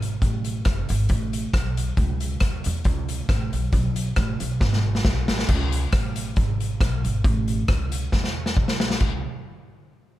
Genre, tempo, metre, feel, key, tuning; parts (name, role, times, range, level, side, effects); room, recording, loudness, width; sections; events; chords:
ska; 136 BPM; 4/4; swing 54% on 8ths; C# minor; A4 = 440 Hz
upright bass; bass; 0.0-9.2 s; F#1 to E2; -25 LUFS; equal
street-band drum kit; drums; 0.0-9.1 s; crash cymbal, hi-hat, kick drum, rim click, snare drum; -23 LUFS; equal
little or no reverb; -21 LUFS; side -14 dB against mid
0.0-5.5 A section; 5.5-9.0 B section; 9.0-10.2 C section
drum fill 4.6-5.5, 8.1-9.0